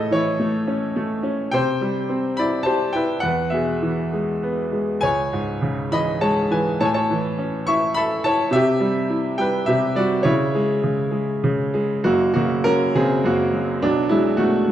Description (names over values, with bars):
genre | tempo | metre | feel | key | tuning
classical, lyrical solo piano | 103 BPM | 3/4 | rubato | C# minor | A4 = 440 Hz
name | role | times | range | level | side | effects
bright baby grand piano | solo | 0.0-14.7 s | Gb1 to C#6 | -18 LUFS | equal | none
room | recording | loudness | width
moderate scoring stage reverb, RT60 1.8 s | dark, warm production | -18 LUFS | side -11 dB against mid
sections
0.0-12.1 A section; 12.1-14.7 B section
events
none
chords
0.0 A; 1.5 C; 3.2 E; 5.0 C#m; 6.8 A; 8.5 C; 10.2 C#m; 12.1 Gb; 13.8 Cb5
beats
0.40 0.96 | 1.52 2.10 2.67 | 3.23 3.82 4.42 | 5.03 5.62 6.21 | 6.80 7.38 7.96 | 8.53 9.09 9.66 | 10.24 10.83 11.44 | 12.05 12.65 13.24 | 13.81 14.38